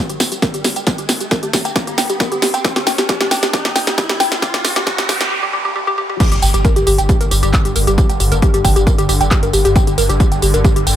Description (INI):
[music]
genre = driving peak-time techno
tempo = 135 BPM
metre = 4/4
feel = straight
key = G minor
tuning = A4 = 440 Hz
[part]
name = riser, noise sweep and impact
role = sound effects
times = 0.1-8.0 s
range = none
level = -24 LUFS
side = right 1 dB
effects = none
[part]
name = woody wave-folded pluck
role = riff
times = 0.1-10.9 s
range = G4 to G5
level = -19 LUFS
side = equal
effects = analog chorus, sidechain pumping, tape echo
[part]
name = techno drum kit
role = drums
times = 0.1-11.0 s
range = crash cymbal, handclaps, hi-hat, snare drum, tambourine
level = -19 LUFS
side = equal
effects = none
[part]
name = electronic kick drum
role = drums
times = 0.4-10.7 s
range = none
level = -16 LUFS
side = equal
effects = none
[part]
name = swarming drone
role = drone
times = 6.9-11.0 s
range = G2 to D3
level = -22 LUFS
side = left 1 dB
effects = built-in reverb, sidechain pumping
[part]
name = warm sub bass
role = bass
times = 6.3-11.0 s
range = G1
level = -18 LUFS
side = equal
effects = tube saturation, sidechain pumping, low-pass filter
[sound]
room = light reverb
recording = high-pass filter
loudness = -13 LUFS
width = side -11 dB against mid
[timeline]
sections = 0.0-6.2 A section; 6.2-11.0 B section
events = build-up 0.0-6.2; drum fill 0.0-5.3; filter sweep on synth arpeggio sound 0.0-6.2; riser 0.1-5.3; noise sweep 4.4-6.2; break 5.3-6.2; drop 6.2-11.0; impact 6.2-8.0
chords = 0.0 N.C.; 6.2 Gm